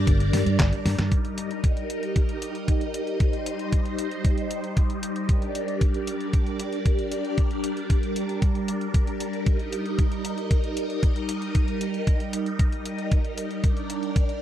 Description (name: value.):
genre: italo disco.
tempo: 115 BPM.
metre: 4/4.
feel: straight.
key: unclear.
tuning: A4 = 438 Hz.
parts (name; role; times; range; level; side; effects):
phased string machine; sustained chords; 0.0-14.4 s; G3 to Eb5; -28 LUFS; equal; ensemble chorus, phaser.
fingered electric bass with an envelope filter; bass; 0.0-1.1 s; G1 to G2; -24 LUFS; equal; none.
detuned 8-bit digital drum machine; drums; 0.1-14.4 s; handclaps, hi-hat, snare drum; -32 LUFS; equal; none.
electronic kick drum; drums; 0.1-14.3 s; none; -22 LUFS; equal; none.
room: little or no reverb.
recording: dry, close 1970s-style studio recording.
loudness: -23 LUFS.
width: side -11 dB against mid.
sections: 0.0-1.1 A section; 1.1-14.4 B section.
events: band accent 0.6; drum fill 0.9.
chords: 0.0 Gm; 1.1 Eb; 5.3 Gm; 9.5 Eb; 13.6 Gm.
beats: 0.07 0.59 | 1.12 1.64 2.16 2.68 | 3.20 3.72 4.25 4.77 | 5.29 5.81 6.33 6.86 | 7.38 7.90 8.42 8.94 | 9.46 9.98 10.51 11.03 | 11.55 12.07 12.59 13.12 | 13.64 14.16.